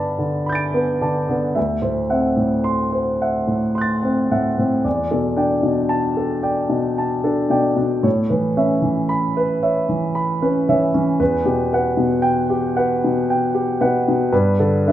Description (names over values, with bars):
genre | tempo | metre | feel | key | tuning
classical, impressionist solo piano | 56 BPM | 3/4 | uneven beats, rubato | unclear | A4 = 440 Hz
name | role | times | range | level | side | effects
warm grand piano | solo | 0.0-14.9 s | D2 to D7 | -17 LUFS | equal | none
room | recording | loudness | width
moderate recital hall reverb, RT60 1.4 s | none | -17 LUFS | side -12 dB against mid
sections
0.0-14.9 A section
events
none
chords
0.0 Gadd9; 1.6 D9; 4.9 Em7; 8.1 Aadd9; 11.2 Emadd9; 14.3 Gadd9